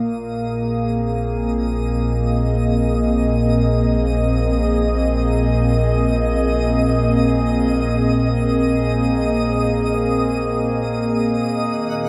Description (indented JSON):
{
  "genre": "ambient",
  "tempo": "free time",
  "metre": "none",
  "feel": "none",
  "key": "unclear",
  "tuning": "A4 = 441 Hz",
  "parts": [
    { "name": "warbly tape-like pad", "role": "sustained chords", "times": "0.0-12.1 s", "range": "Bb2 to F5", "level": "-20 LUFS", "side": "equal", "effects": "chorus, built-in reverb" },
    { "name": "warm sub bass", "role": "bass", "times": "0.0-12.1 s", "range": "Bb1 to Eb2", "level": "-26 LUFS", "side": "equal", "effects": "none" },
    { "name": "twinkling granular texture", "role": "texture", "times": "0.0-12.1 s", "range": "Gb4 to Gb6", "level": "-33 LUFS", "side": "equal", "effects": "built-in reverb" }
  ],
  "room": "wet cathedral reverb, RT60 7.5 s",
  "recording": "none",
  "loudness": "-19 LUFS",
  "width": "mono",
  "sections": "0.0-12.1 A section",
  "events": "fade-in on synth texture 0.0-12.1; fade-out on sub bass 0.0-12.1",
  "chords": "0.0 Bb9sus4; 11.5 Ebm",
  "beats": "free time"
}